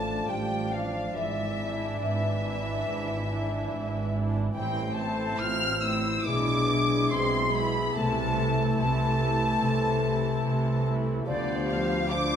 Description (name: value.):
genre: classical, slow romantic movement for symphony orchestra.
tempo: 71 BPM.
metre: 4/4.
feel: rubato.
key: A minor.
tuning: A4 = 439 Hz.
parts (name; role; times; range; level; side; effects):
dark studio violin section; melody; 0.0-12.4 s; D5 to F6; -34 LUFS; left 3 dB; none.
bright silver concert flute; second line; 0.0-12.4 s; D5 to F6; -34 LUFS; left 1 dB; none.
dark clarinet; second line; 0.0-12.4 s; G#4 to D5; -35 LUFS; left 1 dB; none.
warm chamber violin section; second line; 0.0-12.4 s; D5 to F6; -35 LUFS; equal; none.
warm bassoon; accompaniment; 0.0-12.4 s; E3 to F3; -37 LUFS; right 2 dB; none.
warm studio viola section; accompaniment; 0.0-12.4 s; G#3 to G4; -36 LUFS; right 3 dB; none.
mellow French horn section; sustained chords; 0.0-12.4 s; D3 to F4; -34 LUFS; left 2 dB; none.
concert harp; arpeggios; 0.0-12.4 s; G#2 to F5; -34 LUFS; left 6 dB; none.
clear chamber double bass section; bass; 0.0-12.4 s; G#1 to D2; -34 LUFS; right 3 dB; none.
warm chamber cello section; bass; 0.0-12.4 s; D2 to C3; -33 LUFS; right 3 dB; none.
room: wet recital hall reverb, RT60 1.7 s.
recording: minimal, uncompressed stereo recording.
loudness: -25 LUFS.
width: side -8 dB against mid.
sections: 0.0-12.4 A section.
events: none.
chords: 0.0 Dm/A; 1.1 E7/G#; 4.5 Am; 6.3 E7/B; 8.0 Am/C; 11.3 Dm7.